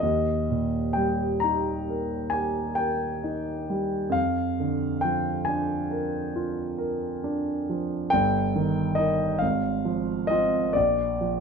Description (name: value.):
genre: classical, romantic nocturne for solo piano.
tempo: 42-47 BPM (dotted quarters).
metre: 9/8.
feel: rubato.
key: Eb major.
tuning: A4 = 440 Hz.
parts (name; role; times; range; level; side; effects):
warm concert grand piano; solo; 0.0-11.4 s; G1 to Bb5; -24 LUFS; equal; none.
room: light reverb.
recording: dark, warm production.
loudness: -24 LUFS.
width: side -6 dB against mid.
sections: 0.0-11.4 A section.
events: none.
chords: 0.0 Eb; 4.2 Bb7/F; 8.1 Eb/G; 9.4 Fm/Ab; 10.8 Bb.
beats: | 0.02 1.43 2.79 | 4.15 5.47 6.78 | 8.12 9.41 10.75.